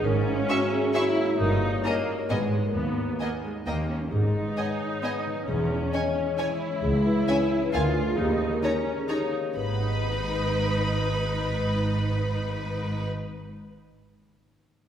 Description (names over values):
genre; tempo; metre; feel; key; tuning
cinematic, playful, whimsical film cue; 132 BPM; 3/4; straight; G# minor; A4 = 440 Hz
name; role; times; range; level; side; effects
marimba with soft mallets; melody; 0.0-13.7 s; D#4 to D#5; -30 LUFS; left 1 dB; none
rich studio viola section; accompaniment; 0.0-13.0 s; G#3 to E#4; -31 LUFS; right 1 dB; none
concert harp; arpeggios; 0.0-13.9 s; G2 to C#6; -32 LUFS; left 4 dB; none
rich chamber cello section; bass; 0.0-13.1 s; C#2 to G#2; -30 LUFS; right 2 dB; none
rich studio double bass section; bass; 0.0-13.1 s; E1 to D#2; -32 LUFS; right 2 dB; none
clear symphonic violin section; melody; 0.5-13.1 s; G5 to C#6; -37 LUFS; equal; none
rich chamber violin section; second line; 0.5-13.0 s; A#3 to E#5; -32 LUFS; left 1 dB; none
room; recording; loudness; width
wet scoring stage reverb, RT60 1.9 s; heard from further back in the room; -24 LUFS; side -9 dB against mid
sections
0.0-9.6 A section; 9.6-12.3 B section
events
none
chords
0.0 A#m7b5/G#; 1.4 D#7/G; 2.3 G#m; 2.8 G#m/D#; 3.7 D#; 4.1 G#m; 5.5 C#m/E; 6.8 C#m; 7.7 A#7/D; 8.2 D#7; 9.6 G#m